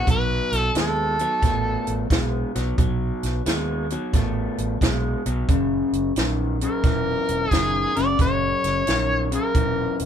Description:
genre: electric blues shuffle.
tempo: 89 BPM.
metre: 4/4.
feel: swing 66% on 8ths.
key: B mixolydian.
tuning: A4 = 437 Hz.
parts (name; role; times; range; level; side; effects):
overdriven harmonica; melody; 0.0-2.1, 6.6-10.0 s; A4 to D5; -23 LUFS; equal; none.
electric guitar through a small old amp; riff; 0.0-10.1 s; F#2 to A3; -25 LUFS; left 2 dB; none.
vintage muted fingered electric bass; bass; 0.1-10.1 s; E1 to D#2; -27 LUFS; equal; none.
compact cocktail drum kit; drums; 0.1-10.1 s; hi-hat, kick drum, snare drum; -23 LUFS; right 2 dB; none.
room: moderate small room reverb, RT60 0.5 s.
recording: band playing live in one room.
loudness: -20 LUFS.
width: side -8 dB against mid.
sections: 0.0-10.1 A section.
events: none.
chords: 0.1 B6; 5.5 F#6.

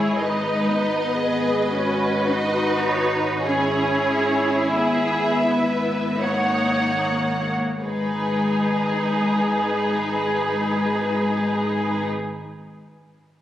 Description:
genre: classical, slow romantic movement for string orchestra.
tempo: 34-59 BPM.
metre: 3/4.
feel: rubato.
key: G# minor.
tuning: A4 = 440 Hz.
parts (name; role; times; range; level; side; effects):
warm symphonic violin section; melody; 0.0-12.1 s; B4 to F#5; -27 LUFS; left 1 dB; none.
warm symphonic violin section; second line; 0.0-12.1 s; G#4 to C#5; -25 LUFS; left 1 dB; none.
warm symphonic viola section; accompaniment; 0.0-12.1 s; D#4 to G#4; -27 LUFS; right 1 dB; none.
clear symphonic double bass section; bass; 0.0-12.0 s; G#1; -30 LUFS; equal; none.
rich symphonic cello section; bass; 0.0-12.1 s; G#3 to D#4; -24 LUFS; equal; none.
room: moderate scoring stage reverb, RT60 2.0 s.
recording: recorded on a phone in the room, studio reverb, compression.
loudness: -19 LUFS.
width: side -12 dB against mid.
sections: 0.0-7.8 A section; 7.8-12.4 B section.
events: slowing down 0.0-7.8.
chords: 0.2 G#m; 3.4 C#m/G#; 7.8 G#m.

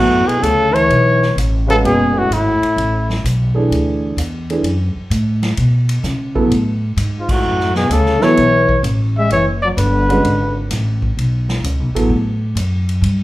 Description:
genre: modal jazz.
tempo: 129 BPM.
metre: 4/4.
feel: swing 68% on 8ths.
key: B dorian.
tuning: A4 = 436 Hz.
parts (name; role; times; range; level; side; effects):
warm trumpet; melody; 0.0-3.3, 7.2-10.7 s; E4 to E5; -16 LUFS; equal; plate reverb.
breathy trombone; second line; 0.0-3.2, 7.2-10.7 s; G#2 to G#3; -20 LUFS; left 2 dB; none.
warm concert grand piano; accompaniment; 0.0-12.1 s; E3 to B4; -17 LUFS; right 2 dB; none.
upright bass; bass; 0.0-13.2 s; F#1 to C#3; -17 LUFS; equal; none.
swinging big-band drum kit; drums; 0.3-13.2 s; crash cymbal, hi-hat, kick drum, ride cymbal, snare drum; -26 LUFS; equal; none.
room: wet large studio reverb, RT60 0.8 s.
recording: heard from further back in the room.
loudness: -13 LUFS.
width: side -16 dB against mid.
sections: 0.0-13.2 A section.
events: band accent 7.2.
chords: 0.0 Bm11.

